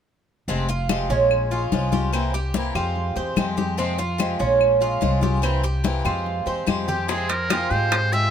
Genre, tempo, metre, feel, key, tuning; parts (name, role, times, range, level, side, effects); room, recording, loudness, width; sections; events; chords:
latin, Cuban son and guajira; 145 BPM; 4/4; straight; F harmonic minor; A4 = 440 Hz
picked swing-style acoustic guitar; accompaniment; 0.5-8.3 s; C3 to G4; -27 LUFS; left 5 dB
Cuban tres; arpeggios; 0.5-8.3 s; C4 to C5; -24 LUFS; right 5 dB
upright bass; bass; 0.5-8.3 s; F1 to Ab2; -25 LUFS; equal
congas; percussion; 0.5-8.3 s; -26 LUFS; left 5 dB
claves; percussion; 0.9-8.1 s; -32 LUFS; left 8 dB
trumpet with metal mute; melody; 6.9-8.3 s; G4 to E5; -23 LUFS; equal
bongos; percussion; 7.1-8.3 s; -32 LUFS; left 8 dB
timbales; percussion; 7.3-8.1 s; -28 LUFS; right 5 dB
light reverb; -20 LUFS; side -8 dB against mid
0.5-7.1 A section; 7.1-8.3 B section
drum fill 6.7-7.1
0.5 Fmadd9; 1.3 Bbm7; 2.1 C7b13; 3.0 Fmadd9; 4.6 Bbm7; 5.4 C7b13; 6.3 Fmadd9